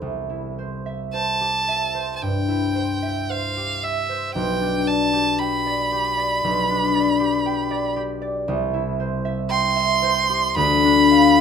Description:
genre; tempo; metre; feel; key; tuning
classical, romantic duo for violin and harp; 52-59 BPM; 4/4; rubato; C major; A4 = 440 Hz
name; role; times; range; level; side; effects
concert harp; accompaniment; 0.0-11.4 s; B1 to G5; -21 LUFS; left 2 dB; none
rich violin; melody; 1.1-11.4 s; E5 to C6; -21 LUFS; right 2 dB; none
room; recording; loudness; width
light reverb; minimal, uncompressed stereo recording; -19 LUFS; side -7 dB against mid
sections
0.0-11.4 A section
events
none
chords
0.0 C; 4.4 G/B; 8.5 C; 10.6 Dm

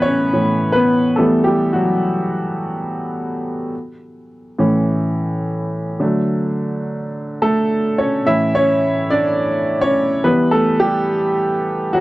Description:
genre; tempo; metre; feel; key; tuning
pop; 106 BPM; 4/4; straight; A mixolydian; A4 = 440 Hz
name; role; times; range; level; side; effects
clear upright piano; solo; 0.0-12.0 s; A2 to E5; -15 LUFS; equal; none
room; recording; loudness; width
moderate booth ambience, RT60 0.2 s; dry, close 1970s-style studio recording; -15 LUFS; side -18 dB against mid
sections
0.0-12.0 A section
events
upright piano solo 0.0-12.0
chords
0.0 Aadd9; 1.2 Emadd9; 3.7 A; 6.0 D; 8.3 A; 10.2 Em

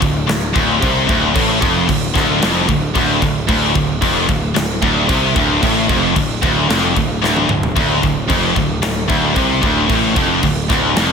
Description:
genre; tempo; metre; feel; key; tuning
heavy metal; 112 BPM; 4/4; straight; D minor; A4 = 441 Hz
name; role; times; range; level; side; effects
distorted electric guitar; riff; 0.0-11.1 s; D2 to C3; -20 LUFS; right 10 dB; overdrive
heavy high-gain guitar; riff; 0.0-11.1 s; D2 to C3; -17 LUFS; left 10 dB; distortion, slapback echo
high-gain distorted guitar; riff; 0.0-11.1 s; D2 to C3; -21 LUFS; right 1 dB; distortion, slapback echo
fuzz picked electric bass; bass; 0.0-11.1 s; D1 to C2; -21 LUFS; equal; overdrive
tight metal drum kit; drums; 0.0-11.1 s; crash cymbal, kick drum, snare drum, toms; -20 LUFS; equal; none
room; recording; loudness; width
moderate recital hall reverb, RT60 1.5 s, small room ambience; big arena sound; -13 LUFS; side -6 dB against mid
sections
0.0-11.1 A section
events
half time 0.0-11.1; drum fill 7.2-7.8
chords
0.0 Dm

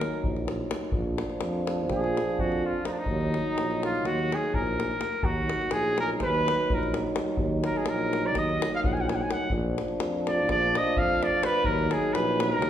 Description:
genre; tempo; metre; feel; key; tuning
balkan folk, Balkan brass band; 252 BPM (eighths); 9/8; straight; Eb harmonic minor; A4 = 440 Hz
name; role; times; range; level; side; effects
warm cornet; melody; 0.0-12.7 s; D4 to Ab5; -28 LUFS; equal; none
mellow euphonium; accompaniment; 0.0-12.7 s; F3 to Gb3; -33 LUFS; right 5 dB; none
warm euphonium; accompaniment; 0.0-12.7 s; D4 to Eb4; -33 LUFS; left 4 dB; none
mellow tuba; bass; 0.0-12.7 s; Bb1 to F2; -32 LUFS; equal; none
davul; percussion; 0.0-12.7 s; none; -32 LUFS; left 1 dB; none
room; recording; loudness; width
wet recital hall reverb, RT60 1.6 s; recorded in a church or concert hall; -24 LUFS; side -10 dB against mid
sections
0.0-12.7 A section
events
cornet solo 0.0-12.7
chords
0.0 Ebm; 0.9 Bb; 3.1 Ebm; 9.5 Bb; 11.6 Ebm

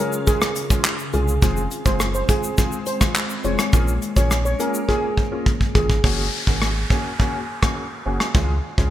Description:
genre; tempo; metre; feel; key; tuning
dancehall; 104 BPM; 4/4; straight; unclear; A4 = 444 Hz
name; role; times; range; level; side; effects
steel pan; melody; 0.0-5.9 s; Ab4 to Db5; -26 LUFS; equal; digital delay
dark concert grand piano; accompaniment; 0.0-8.9 s; Ab3 to Ab4; -27 LUFS; equal; ensemble chorus
glassy FM pad; sustained chords; 0.0-6.0 s; Db3 to Ab4; -31 LUFS; left 2 dB; ensemble chorus, built-in reverb, sidechain pumping
soft brush drum kit; drums; 0.1-8.9 s; handclaps, hi-hat, kick drum, rim click, shaker; -20 LUFS; equal; gated reverb
sub bass with octave; bass; 1.1-8.9 s; F1 to Db2; -23 LUFS; equal; none
downlifter; sound effects; 6.0-8.9 s; none; -29 LUFS; left 2 dB; none
room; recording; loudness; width
light reverb, small room ambience; bright 1980s-style digital production; -18 LUFS; side -12 dB against mid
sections
0.0-6.0 A section; 6.0-8.9 B section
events
drum fill 4.9-6.0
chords
0.0 Db; 1.4 Fm; 3.7 Bbm7; 6.0 Gbadd9; 8.3 Db

